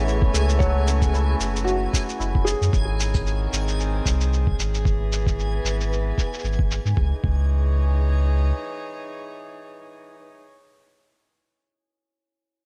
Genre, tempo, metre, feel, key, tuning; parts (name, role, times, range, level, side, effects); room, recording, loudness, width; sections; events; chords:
folktronica; 113 BPM; 4/4; swing 56% on 16ths; C# minor; A4 = 438 Hz
felt-muted upright piano; melody; 0.0-3.2 s; F#4 to E5; -32 LUFS; equal; delay
warm string quartet; sustained chords; 0.0-10.5 s; D#3 to C#5; -34 LUFS; equal; low-pass filter
hammered dulcimer; arpeggios; 0.0-5.7 s; F#3 to A4; -35 LUFS; equal; delay
warm sub bass; bass; 0.0-8.5 s; F#1 to G#2; -24 LUFS; equal
backwards swelling texture; texture; 0.0-7.0 s; G#4 to G#5; -38 LUFS; equal; built-in reverb
shaker; drums; 0.1-7.0 s; -33 LUFS; equal; low-pass filter on hats, low-pass filter on perc, low-pass filter on snare, low-pass filter on toms
electronic kick drum; drums; 0.2-7.4 s; -25 LUFS; equal
studio ambience; -22 LUFS; mono
0.0-7.0 A section; 7.0-11.2 B section
0.0 F#m7; 2.7 G#; 4.8 E/G#; 7.0 C#madd9